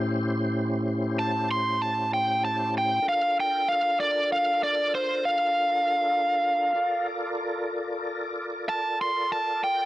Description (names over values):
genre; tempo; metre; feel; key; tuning
blues; 64 BPM (dotted quarters); 12/8; straight; unclear; A4 = 440 Hz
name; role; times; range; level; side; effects
tonewheel organ; sustained chords; 0.0-9.9 s; A2 to D5; -30 LUFS; left 1 dB; slow rotary speaker, overdrive, chorus vibrato
biting lead guitar; melody; 1.2-9.9 s; C5 to B#5; -24 LUFS; equal; overdrive
room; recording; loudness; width
light reverb; dry, close 1970s-style studio recording; -23 LUFS; side -15 dB against mid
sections
0.0-9.9 A section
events
none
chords
0.0 A7#9; 3.0 Bbmaj7